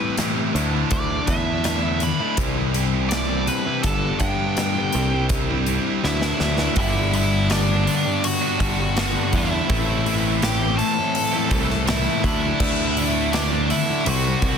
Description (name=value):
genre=quiet-loud alternative rock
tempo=82 BPM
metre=4/4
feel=straight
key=G major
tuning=A4 = 440 Hz
part: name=nasal lead guitar with a parked wah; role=melody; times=0.0-14.6 s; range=D4 to B5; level=-26 LUFS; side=right 1 dB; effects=overdrive
part: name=electric guitar through a small old amp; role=arpeggios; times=0.0-6.8 s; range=A2 to A4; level=-28 LUFS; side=right 1 dB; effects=phaser
part: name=thick fuzz guitar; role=riff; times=0.0-14.6 s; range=G2 to G4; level=-26 LUFS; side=left 12 dB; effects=distortion
part: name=tight distorted guitar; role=riff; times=0.0-14.6 s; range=G2 to E4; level=-28 LUFS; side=right 14 dB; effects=distortion
part: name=big rock drum kit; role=drums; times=0.2-14.6 s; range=crash cymbal, hi-hat, kick drum, snare drum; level=-26 LUFS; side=equal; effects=soft clipping on snare
part: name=picked electric bass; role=bass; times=0.5-14.6 s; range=G1 to G2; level=-24 LUFS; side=equal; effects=none
part: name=distorted electric guitar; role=riff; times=6.8-14.6 s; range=G2 to D4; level=-27 LUFS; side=right 1 dB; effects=distortion
room=little or no reverb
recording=dense, heavily limited modern master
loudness=-18 LUFS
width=side -7 dB against mid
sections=0.0-6.8 A section; 6.8-14.6 B section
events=lead electric guitar solo 0.0-6.8; drum fill 6.0-6.8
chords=0.0 Am7; 0.6 Dsus2; 2.4 Cadd9; 3.8 Gadd9; 4.9 Cadd9; 6.0 Dadd9; 6.8 G; 9.7 Am7; 12.2 Dsus2; 14.1 C